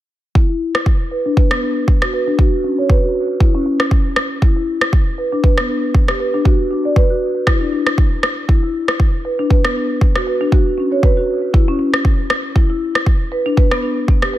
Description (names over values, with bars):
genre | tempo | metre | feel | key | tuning
afro house | 118 BPM | 4/4 | swing 56% on 16ths | E dorian | A4 = 440 Hz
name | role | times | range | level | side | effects
marimba with soft mallets | arpeggios | 0.4-14.4 s | B3 to D5 | -18 LUFS | equal | sidechain pumping, low-pass filter, dub echo
electronic kick drum | drums | 0.4-14.2 s | none | -13 LUFS | equal | studio reverb
electronic rim click | drums | 0.7-14.3 s | none | -19 LUFS | equal | studio reverb
room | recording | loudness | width
small room ambience | none | -13 LUFS | side -14 dB against mid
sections
0.4-14.4 A section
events
filter sweep on marimba 0.4-14.4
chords
none